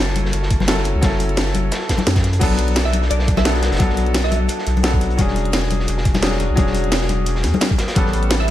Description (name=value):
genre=liquid drum and bass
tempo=173 BPM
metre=4/4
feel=swing 54% on 16ths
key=B minor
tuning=A4 = 439 Hz
part: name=bright concert grand piano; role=accompaniment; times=0.0-8.5 s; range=F#3 to A4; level=-23 LUFS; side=left 2 dB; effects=tape echo
part: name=saturated sub bass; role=bass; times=0.0-8.5 s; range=E1 to F#2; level=-20 LUFS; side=equal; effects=none
part: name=crunchy breakbeat drum kit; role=drums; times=0.1-8.5 s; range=hi-hat, snare drum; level=-27 LUFS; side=equal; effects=high-pass filter on hats, studio reverb, high-pass filter on snare, high-pass filter on room
part: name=drum and bass drum kit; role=drums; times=0.2-8.5 s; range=crash cymbal, hi-hat, snare drum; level=-22 LUFS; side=equal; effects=studio reverb
part: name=congas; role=percussion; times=0.2-8.0 s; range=none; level=-26 LUFS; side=left 5 dB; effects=none
part: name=electronic kick drum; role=drums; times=0.5-8.0 s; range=none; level=-19 LUFS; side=equal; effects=studio reverb
part: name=glassy wavetable pluck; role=melody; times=2.9-4.6, 8.4-8.5 s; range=D5 to E5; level=-27 LUFS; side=right 4 dB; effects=chorus, vintage 12-bit sampler grit, dub echo
room=small room ambience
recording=none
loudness=-15 LUFS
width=side -13 dB against mid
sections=0.0-8.5 A section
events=none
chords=0.0 F#m7; 2.4 Bm7; 5.2 E13; 8.0 A9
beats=0.33 0.68 | 1.03 1.37 1.72 2.07 | 2.41 2.76 3.11 3.45 | 3.80 4.15 4.49 4.84 | 5.19 5.53 5.88 6.23 | 6.58 6.92 7.27 7.62 | 7.96 8.31